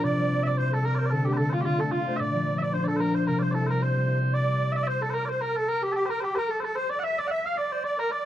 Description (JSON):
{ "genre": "celtic folk, Celtic reel", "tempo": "223 BPM", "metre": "4/4", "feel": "swing 55% on 8ths", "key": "C mixolydian", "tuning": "A4 = 437 Hz", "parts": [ { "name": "mellow small bagpipes", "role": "melody", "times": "0.0-8.2 s", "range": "F4 to F#5", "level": "-29 LUFS", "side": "equal", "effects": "none" }, { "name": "musette accordion", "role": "second line", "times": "0.0-8.3 s", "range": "F4 to F5", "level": "-30 LUFS", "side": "right 1 dB", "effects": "none" }, { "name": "concert harp", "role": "accompaniment", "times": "0.0-6.7 s", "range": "Bb2 to G4", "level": "-26 LUFS", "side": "left 1 dB", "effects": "none" } ], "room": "light reverb", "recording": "dry, close 1970s-style studio recording", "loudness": "-24 LUFS", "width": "side -12 dB against mid", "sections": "0.0-4.3 A section; 4.3-8.3 A section", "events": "none", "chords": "0.0 Cadd9; 1.1 Dm; 2.2 Bb; 3.3 C; 4.3 N.C." }